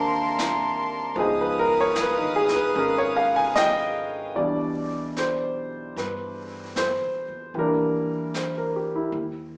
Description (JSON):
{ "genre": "jazz ballad", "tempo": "76 BPM", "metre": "4/4", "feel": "swing 66% on 8ths", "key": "unclear", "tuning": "A4 = 438 Hz", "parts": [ { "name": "clear concert grand piano", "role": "accompaniment", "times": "0.0-9.2 s", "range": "B2 to Ab5", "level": "-26 LUFS", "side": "equal", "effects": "slapback echo" }, { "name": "warm chamber string section", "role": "sustained chords", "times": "0.0-4.3 s", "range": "Bb4 to Eb6", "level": "-30 LUFS", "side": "equal", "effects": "none" }, { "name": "upright bass", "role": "bass", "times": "0.0-9.6 s", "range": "Ab1 to B2", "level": "-45 LUFS", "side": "equal", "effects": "none" }, { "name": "jazz brush drum kit", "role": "drums", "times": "0.4-9.6 s", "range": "brushed snare drum, hi-hat, snare drum", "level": "-36 LUFS", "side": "equal", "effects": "slapback echo" } ], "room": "moderate club ambience, RT60 0.5 s", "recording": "live gig heard through the venue's PA, club reverb, small speaker sound", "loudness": "-25 LUFS", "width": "mono", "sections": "0.0-4.4 A section; 4.4-9.6 B section", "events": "none", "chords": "0.0 Abmaj9; 1.2 Db9; 4.4 Cmaj7; 7.5 Em7b5" }